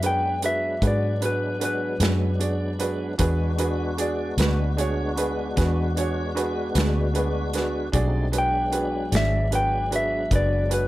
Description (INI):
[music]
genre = slow blues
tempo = 51 BPM (dotted quarters)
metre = 12/8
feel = straight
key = E mixolydian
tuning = A4 = 440 Hz
[part]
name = mellow electric guitar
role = melody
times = 0.0-10.9 s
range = B4 to G5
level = -25 LUFS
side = left 1 dB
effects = none
[part]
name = warm grand piano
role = accompaniment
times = 0.0-10.9 s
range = D4 to D5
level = -28 LUFS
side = right 3 dB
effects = none
[part]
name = tonewheel organ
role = sustained chords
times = 0.0-10.9 s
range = F#3 to F#4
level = -31 LUFS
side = left 2 dB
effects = slow rotary speaker, overdrive, chorus vibrato
[part]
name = vintage muted fingered electric bass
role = bass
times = 0.0-10.9 s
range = F#1 to G#2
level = -25 LUFS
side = equal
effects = none
[part]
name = natural country drum kit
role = drums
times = 0.0-10.9 s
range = hi-hat, kick drum, snare drum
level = -27 LUFS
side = equal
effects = none
[sound]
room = light reverb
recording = none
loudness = -21 LUFS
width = side -16 dB against mid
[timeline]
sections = 0.0-10.9 A section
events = none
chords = 0.0 E9